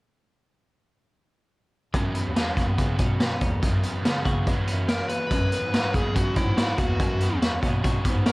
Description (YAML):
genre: jangly indie pop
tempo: 142 BPM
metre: 4/4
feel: straight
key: unclear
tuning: A4 = 441 Hz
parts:
  - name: raw garage guitar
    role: accompaniment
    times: 1.9-8.3 s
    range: F#2 to C#4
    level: -32 LUFS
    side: right 3 dB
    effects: overdrive
  - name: twelve-string electric guitar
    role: arpeggios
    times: 1.9-8.3 s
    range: F#2 to F#4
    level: -33 LUFS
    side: left 2 dB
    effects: wide subtle chorus
  - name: dark bass clarinet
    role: bass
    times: 1.9-8.3 s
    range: D#2 to C#3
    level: -30 LUFS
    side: equal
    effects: none
  - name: raw garage drum kit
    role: drums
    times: 1.9-8.3 s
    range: hi-hat, kick drum, snare drum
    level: -23 LUFS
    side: equal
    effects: none
  - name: dark smooth lead guitar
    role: melody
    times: 4.9-8.3 s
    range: E4 to B4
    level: -29 LUFS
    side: left 1 dB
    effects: overdrive
room: little or no reverb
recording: worn, warbling old tape, cassette tape, warbly pitch drift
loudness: -22 LUFS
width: side -23 dB against mid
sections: 1.9-5.3 A section; 5.3-8.3 B section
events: none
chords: 1.9 F#7sus4